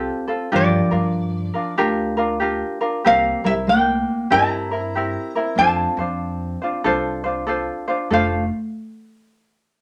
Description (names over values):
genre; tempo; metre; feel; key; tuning
Hawaiian; 95 BPM; 4/4; swing 62% on 8ths; F major; A4 = 440 Hz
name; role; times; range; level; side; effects
metal-body resonator slide guitar; melody; 0.0-8.5 s; D5 to Bb5; -21 LUFS; equal; none
fingerpicked steel-string acoustic guitar; second line; 0.0-8.5 s; F3 to E4; -27 LUFS; equal; none
ukulele; accompaniment; 0.0-8.4 s; C4 to C5; -24 LUFS; equal; none
upright bass; bass; 0.0-8.5 s; F1 to G2; -30 LUFS; equal; none
room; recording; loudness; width
wet studio reverb, RT60 0.5 s; none; -20 LUFS; mono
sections
0.0-8.1 A section; 8.1-9.8 B section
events
none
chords
0.0 Fadd9; 0.5 Gm7; 3.0 C7; 5.6 F6